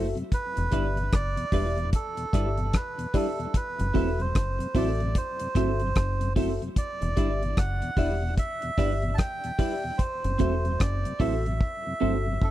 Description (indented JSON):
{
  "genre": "roots reggae",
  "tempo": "74 BPM",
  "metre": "4/4",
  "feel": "swing 61% on 16ths",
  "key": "E minor",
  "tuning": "A4 = 440 Hz",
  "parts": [
    { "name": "clean electric guitar", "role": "accompaniment", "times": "0.0-12.2 s", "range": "G3 to C5", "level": "-32 LUFS", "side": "right 6 dB", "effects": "wide subtle chorus, tape echo" },
    { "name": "mellow tonewheel organ", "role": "accompaniment", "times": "0.0-12.3 s", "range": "E2 to E4", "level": "-35 LUFS", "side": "left 2 dB", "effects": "slow rotary speaker, tape echo" },
    { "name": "mellow reed electric piano", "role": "stabs", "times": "0.0-12.3 s", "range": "F#4 to E5", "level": "-34 LUFS", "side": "left 3 dB", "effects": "fast tremolo" },
    { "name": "deep dub fingered electric bass", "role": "bass", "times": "0.0-12.5 s", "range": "E1 to A1", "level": "-28 LUFS", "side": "equal", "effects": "none" },
    { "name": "cloth-damped thuddy drum kit", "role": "drums", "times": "0.2-12.5 s", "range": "hi-hat, kick drum, rim click", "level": "-25 LUFS", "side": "equal", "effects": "none" },
    { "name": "melodica", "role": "melody", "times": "0.3-12.5 s", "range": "A4 to A5", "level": "-32 LUFS", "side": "right 2 dB", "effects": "tape echo" }
  ],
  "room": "little or no reverb",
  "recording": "dry, close 1970s-style studio recording",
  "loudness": "-24 LUFS",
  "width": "side -14 dB against mid",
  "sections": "0.0-12.5 A section",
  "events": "drum fill 11.6-12.5",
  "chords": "0.3 Em7; 3.5 F#m7b5; 6.8 Em7; 10.0 F#m7b5",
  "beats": "| 0.32 1.12 1.93 2.73 | 3.54 4.35 5.15 5.96 | 6.77 7.57 8.38 9.19 | 9.99 10.80 11.61 12.41"
}